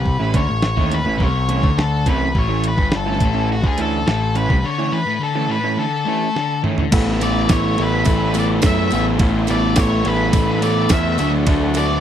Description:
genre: indie rock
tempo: 105 BPM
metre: 4/4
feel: straight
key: A major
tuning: A4 = 437 Hz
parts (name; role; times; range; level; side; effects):
- octave-fuzz lead guitar; melody; 0.0-12.0 s; F#4 to E5; -23 LUFS; left 2 dB; distortion
- crunchy overdriven guitar; riff; 0.0-12.0 s; G2 to B4; -22 LUFS; left 8 dB; spring reverb
- growling picked electric bass; bass; 0.0-12.0 s; G1 to F#2; -21 LUFS; equal; overdrive
- detuned 8-bit digital drum machine; drums; 0.1-11.9 s; crash cymbal, hi-hat, kick drum, ride cymbal, snare drum, toms; -19 LUFS; equal; none
- overdriven semi-hollow guitar; riff; 0.2-12.0 s; D3 to A4; -22 LUFS; right 9 dB; wide subtle chorus
- overdriven combo organ; sustained chords; 6.9-12.0 s; A4 to E6; -32 LUFS; right 3 dB; none
- tambourine; percussion; 7.2-11.9 s; none; -34 LUFS; right 21 dB; none
room: little or no reverb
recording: dry, close 1970s-style studio recording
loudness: -15 LUFS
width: side -10 dB against mid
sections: 0.0-6.9 A section; 6.9-12.0 B section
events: break 4.6-6.9; drum fill 6.4-6.9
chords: 0.0 A; 6.9 Asus2; 11.2 Dmaj7

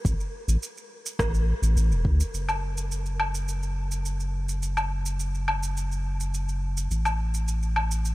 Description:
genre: sunset chillout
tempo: 105 BPM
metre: 4/4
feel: straight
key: unclear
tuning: A4 = 440 Hz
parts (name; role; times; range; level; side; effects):
- round analog bass; bass; 0.0-8.1 s; E1 to D2; -26 LUFS; equal; none
- electronic kick drum; drums; 0.0-2.2 s; none; -27 LUFS; equal; overdrive
- electronic shaker, rim click and woodblock; drums; 0.1-8.1 s; none; -32 LUFS; equal; overdrive
room: little or no reverb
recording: none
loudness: -25 LUFS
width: side -19 dB against mid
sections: 0.0-2.3 A section; 2.3-8.1 B section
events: none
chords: none

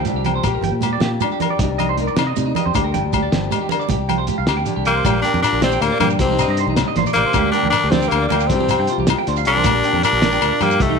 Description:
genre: highlife guitar band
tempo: 104 BPM (dotted quarters)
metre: 12/8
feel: straight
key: Bb major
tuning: A4 = 439 Hz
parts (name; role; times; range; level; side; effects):
- nylon-string guitar; accompaniment; 0.0-11.0 s; G2 to Bb4; -25 LUFS; left 13 dB; none
- clean electric guitar; arpeggios; 0.0-11.0 s; Eb4 to G5; -24 LUFS; right 10 dB; slapback echo
- fingered electric bass; bass; 0.0-11.0 s; G1 to C3; -23 LUFS; left 1 dB; none
- cloth-damped thuddy drum kit; drums; 0.0-10.9 s; hi-hat, kick drum, snare drum; -24 LUFS; equal; none
- congas; percussion; 0.1-11.0 s; none; -25 LUFS; right 15 dB; none
- shekere; percussion; 0.1-10.9 s; none; -28 LUFS; right 7 dB; none
- agogo bells; percussion; 0.3-10.8 s; none; -25 LUFS; left 16 dB; none
- raspy tenor saxophone; melody; 4.9-11.0 s; A3 to D4; -19 LUFS; left 4 dB; none
- clear alto saxophone; second line; 4.9-11.0 s; Eb4 to Bb4; -26 LUFS; right 11 dB; none
room: light reverb, small room ambience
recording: 1960s-style stereo with parts hard left and right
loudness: -15 LUFS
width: side -5 dB against mid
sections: 0.0-5.0 A section; 5.0-11.0 B section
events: drum fill 4.5-5.0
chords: 0.4 Bb6; 1.6 Cmadd9; 2.7 Bb6 (rootless); 3.9 Fsus2/C; 5.0 Bb6; 6.2 Cmadd9; 7.3 Bb6/D; 8.5 Fsus2/C; 9.7 Bb6

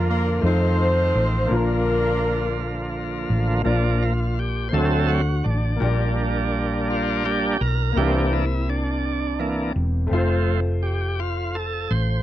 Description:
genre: slow gospel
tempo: 56 BPM (dotted quarters)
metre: 6/8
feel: straight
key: Bb major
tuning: A4 = 440 Hz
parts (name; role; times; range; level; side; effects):
- mellow horn section; melody; 0.0-3.0 s; Bb3 to C5; -23 LUFS; equal; none
- warm upright piano; accompaniment; 0.0-12.2 s; Bb2 to D5; -28 LUFS; left 3 dB; none
- bright tonewheel organ; sustained chords; 0.0-12.2 s; D3 to C5; -25 LUFS; right 2 dB; slow rotary speaker, overdrive
- hollow-body short-scale fingered electric bass; bass; 0.0-12.2 s; E1 to F2; -23 LUFS; equal; none
room: little or no reverb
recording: dry, close 1970s-style studio recording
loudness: -20 LUFS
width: side -13 dB against mid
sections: 0.0-3.7 A section; 3.7-12.2 B section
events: tonewheel organ solo 3.7-12.2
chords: 0.4 F7; 1.5 Bbmaj7; 3.7 Bb; 4.7 D7; 5.8 Gm/Bb; 8.0 C7; 10.1 F

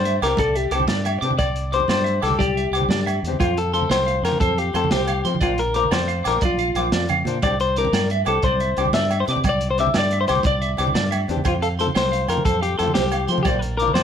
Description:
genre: highlife guitar band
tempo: 119 BPM (dotted quarters)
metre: 12/8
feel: straight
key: C mixolydian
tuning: A4 = 441 Hz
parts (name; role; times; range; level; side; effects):
- semi-hollow electric guitar; melody; 0.0-14.0 s; F4 to E5; -23 LUFS; left 3 dB; none
- fingered electric bass; bass; 0.0-14.0 s; Bb1 to F3; -25 LUFS; right 1 dB; none
- clean electric guitar; arpeggios; 0.1-14.0 s; C5 to D6; -25 LUFS; right 1 dB; phaser, tape echo
- crunchy breakbeat drum kit; drums; 0.1-14.0 s; hi-hat, kick drum, snare drum; -26 LUFS; right 1 dB; none
- flamenco guitar; accompaniment; 0.2-13.9 s; E3 to G4; -30 LUFS; left 9 dB; none
- agogo bells; percussion; 0.2-14.0 s; none; -32 LUFS; right 1 dB; none
- congas; percussion; 0.2-14.0 s; none; -29 LUFS; right 4 dB; none
room: light reverb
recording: tape saturation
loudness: -18 LUFS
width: side -8 dB against mid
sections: 0.0-14.0 A section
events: drum fill 6.8-7.4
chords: 0.0 Cadd9; 3.4 F; 5.4 Bb; 7.4 Cadd9; 11.5 F; 13.5 Bb

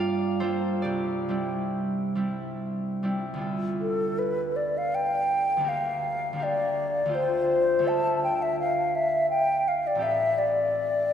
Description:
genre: classical, impressionist duo for flute and harp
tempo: 68-85 BPM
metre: 3/4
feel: rubato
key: D minor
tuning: A4 = 440 Hz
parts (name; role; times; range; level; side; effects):
- concert harp; accompaniment; 0.0-11.1 s; A1 to G5; -29 LUFS; right 1 dB; none
- mellow hollow silver concert flute; melody; 3.8-11.1 s; A4 to A5; -23 LUFS; left 1 dB; none
room: wet church reverb, RT60 3.4 s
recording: none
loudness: -24 LUFS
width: side -8 dB against mid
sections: 0.0-3.4 A section; 3.4-11.1 B section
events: none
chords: 0.0 Gm7; 0.9 Cadd9; 3.4 Dm6; 5.7 Gm7/D; 7.2 Fadd9/D; 7.9 Dmadd9; 10.0 Am9

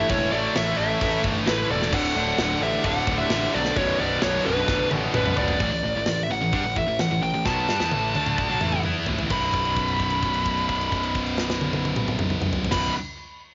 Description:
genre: heavy metal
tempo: 130 BPM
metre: 4/4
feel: straight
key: B minor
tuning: A4 = 442 Hz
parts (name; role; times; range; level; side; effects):
- high-gain lead guitar; melody; 0.0-12.9 s; B4 to B5; -28 LUFS; equal; distortion, cassette tape
- high-gain lead guitar; second line; 0.0-4.9 s; D4 to A4; -38 LUFS; equal; none
- pipe organ, trumpet; sustained chords; 0.0-5.6 s; A3 to F#5; -36 LUFS; equal; none
- distorted electric guitar; riff; 0.0-12.9 s; B1 to E4; -32 LUFS; equal; distortion, cassette tape
- fuzz guitar; riff; 0.0-5.6 s; B1 to A3; -33 LUFS; equal; distortion, cassette tape
- heavy high-gain guitar; riff; 0.0-12.9 s; B1 to E4; -32 LUFS; equal; distortion, cassette tape
- fuzz picked electric bass; bass; 0.1-12.9 s; B0 to G2; -32 LUFS; equal; overdrive
- tight metal drum kit; drums; 0.1-12.8 s; crash cymbal, hi-hat, kick drum, snare drum, toms; -31 LUFS; equal; cassette tape
room: light reverb, small room ambience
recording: home recording on cassette, nothing above 7.5 kHz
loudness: -24 LUFS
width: mono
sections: 0.0-5.6 A section; 5.6-9.3 B section; 9.3-13.0 C section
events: drum fill 4.7-5.6, 7.5-9.3; held note 9.3-12.7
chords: 0.0 A; 1.9 D; 3.8 Bm; 5.6 A5; 9.3 B5

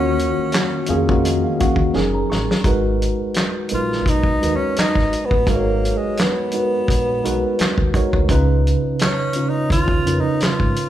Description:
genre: R&B, neo-soul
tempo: 85 BPM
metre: 4/4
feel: swing 55% on 16ths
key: G# dorian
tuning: A4 = 438 Hz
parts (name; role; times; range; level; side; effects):
- clear tenor saxophone; melody; 0.0-10.9 s; G#3 to E#4; -22 LUFS; equal; none
- mellow tine electric piano; accompaniment; 0.0-10.9 s; C#3 to C#6; -20 LUFS; equal; medium stereo tremolo
- deep dub fingered electric bass; bass; 0.0-10.7 s; F#1 to G#2; -23 LUFS; equal; none
- warm soul drum kit; drums; 0.2-10.9 s; handclaps, hi-hat, kick drum, snare drum; -20 LUFS; equal; none
room: light reverb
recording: band playing live in one room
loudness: -16 LUFS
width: side -12 dB against mid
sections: 0.0-2.6 A section; 2.6-10.9 B section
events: tine electric piano fill 0.5-2.6; drum fill 1.9-2.6; tenor saxophone solo 2.6-10.9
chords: 0.0 D#m7; 1.9 F#6; 2.6 G#m9; 8.3 C#7

